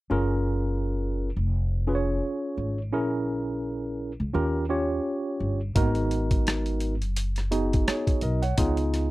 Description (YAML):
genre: hip hop, jazz-hop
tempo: 85 BPM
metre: 4/4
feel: swing 57% on 16ths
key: F# major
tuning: A4 = 443 Hz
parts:
  - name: tine electric piano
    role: accompaniment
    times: 0.1-9.1 s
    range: A#3 to F#5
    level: -27 LUFS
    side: right 1 dB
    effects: medium stereo tremolo
  - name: upright bass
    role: bass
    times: 0.1-9.1 s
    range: E#1 to D#2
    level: -27 LUFS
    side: equal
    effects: none
  - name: boom bap sampler-style drum kit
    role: drums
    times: 5.8-9.1 s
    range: hi-hat, kick drum, rim click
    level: -26 LUFS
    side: equal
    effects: none
room: little or no reverb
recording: dry, close 1970s-style studio recording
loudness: -24 LUFS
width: side -18 dB against mid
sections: 0.1-9.1 A section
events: none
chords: 0.1 F#maj7; 2.9 A#m7b5; 4.3 D#7; 5.8 G#m7; 8.6 C#7